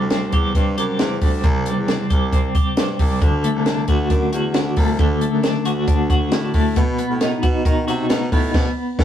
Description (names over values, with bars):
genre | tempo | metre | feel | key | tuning
jangly indie pop | 135 BPM | 4/4 | straight | unclear | A4 = 440 Hz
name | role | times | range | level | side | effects
twelve-string electric guitar | arpeggios | 0.0-9.0 s | B2 to G4 | -20 LUFS | left 1 dB | tremolo
clear baritone saxophone | bass | 0.0-9.0 s | C2 to D#3 | -25 LUFS | right 1 dB | none
compact cocktail drum kit | drums | 0.1-9.0 s | crash cymbal, hi-hat, kick drum, snare drum | -18 LUFS | equal | none
room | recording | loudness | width
moderate small room reverb, RT60 0.6 s | rough rehearsal-room recording | -16 LUFS | side -10 dB against mid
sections
0.0-9.0 A section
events
band accent 8.5-9.0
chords
0.0 C; 3.2 D; 6.8 B